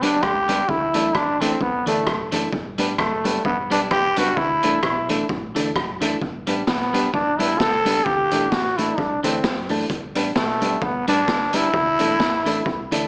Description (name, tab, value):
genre	ska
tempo	130 BPM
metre	4/4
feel	swing 57% on 8ths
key	G major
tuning	A4 = 440 Hz
part	growling trombone	melody	0.0-13.1 s	A3 to A4	-23 LUFS	equal	slapback echo
part	clean electric guitar	accompaniment	0.0-13.1 s	E3 to D4	-30 LUFS	equal	none
part	dark upright piano	stabs	0.0-13.0 s	D4 to B4	-30 LUFS	equal	none
part	fingered electric bass	bass	0.0-13.1 s	E1 to D2	-38 LUFS	equal	none
part	raw garage drum kit	drums	0.0-13.0 s	hi-hat, kick drum, rim click, snare drum	-27 LUFS	equal	none
room	moderate spring reverb, RT60 1.2 s, studio ambience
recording	small speaker sound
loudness	-21 LUFS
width	mono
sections	0.0-13.1 A section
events	none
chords	0.0 G; 0.7 Dsus2; 2.5 G; 4.4 Dsus2; 6.2 G; 8.1 Dsus2; 9.9 G; 11.7 Dsus2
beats	0.23 | 0.69 1.15 1.61 2.07 | 2.53 2.99 3.45 3.91 | 4.37 4.83 5.29 5.75 | 6.21 6.67 7.13 7.59 | 8.05 8.51 8.97 9.43 | 9.89 10.36 10.82 11.28 | 11.74 12.20 12.66